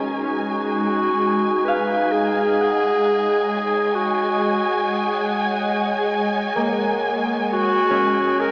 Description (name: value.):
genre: ambient.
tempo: free time.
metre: none.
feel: none.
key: unclear.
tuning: A4 = 439 Hz.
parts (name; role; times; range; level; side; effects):
ethereal airy pad; sustained chords; 0.0-8.5 s; G#3 to A#5; -23 LUFS; equal; ensemble chorus, built-in reverb.
concert harp; arpeggios; 0.0-8.5 s; A#3 to F#5; -26 LUFS; equal; tape echo.
dark studio violin section; texture; 0.0-8.5 s; G#5; -25 LUFS; equal; none.
mellow clarinet; melody; 0.2-8.5 s; F#4 to B4; -21 LUFS; equal; tape echo.
room: wet cathedral reverb, RT60 6.0 s.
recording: small speaker sound.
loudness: -17 LUFS.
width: side -34 dB against mid.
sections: 0.3-8.5 A section.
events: none.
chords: 0.0 G#7(no3); 7.5 D#m7.